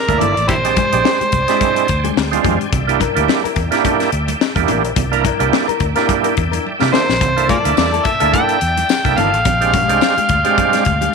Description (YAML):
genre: funk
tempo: 107 BPM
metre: 4/4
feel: swing 56% on 16ths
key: unclear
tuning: A4 = 440 Hz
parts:
  - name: overdriven harmonica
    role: melody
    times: 0.0-2.1, 6.9-11.1 s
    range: E4 to G5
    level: -17 LUFS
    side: equal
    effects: tape echo
  - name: overdriven tonewheel organ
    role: sustained chords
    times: 0.0-11.1 s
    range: D5 to C6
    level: -27 LUFS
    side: equal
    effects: slow rotary speaker, chorus vibrato
  - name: overdriven tonewheel organ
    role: stabs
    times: 0.1-10.8 s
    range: Ab3 to Bb4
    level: -19 LUFS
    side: right 14 dB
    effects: chorus vibrato
  - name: vintage muted fingered electric bass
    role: bass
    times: 0.1-11.1 s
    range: G1 to C3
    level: -21 LUFS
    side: equal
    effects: tube saturation
  - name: crisp fusion drum kit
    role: drums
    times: 0.1-11.1 s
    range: hi-hat, kick drum, snare drum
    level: -20 LUFS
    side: left 6 dB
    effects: none
  - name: congas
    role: percussion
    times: 0.1-11.1 s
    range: none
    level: -27 LUFS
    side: right 14 dB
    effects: none
  - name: mellow electric guitar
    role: accompaniment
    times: 0.2-11.1 s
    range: Ab3 to Bb4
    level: -22 LUFS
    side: left 14 dB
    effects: lush chorus
  - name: tambourine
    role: percussion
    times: 7.8-10.2 s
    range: none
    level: -31 LUFS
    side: left 16 dB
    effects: none
room: light reverb, studio reverb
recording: 1960s-style stereo with parts hard left and right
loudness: -13 LUFS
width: side -4 dB against mid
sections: 0.0-11.1 A section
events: drum fill 6.7-7.2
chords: 0.5 Bb13; 2.7 C9; 7.2 C13; 9.5 Bb13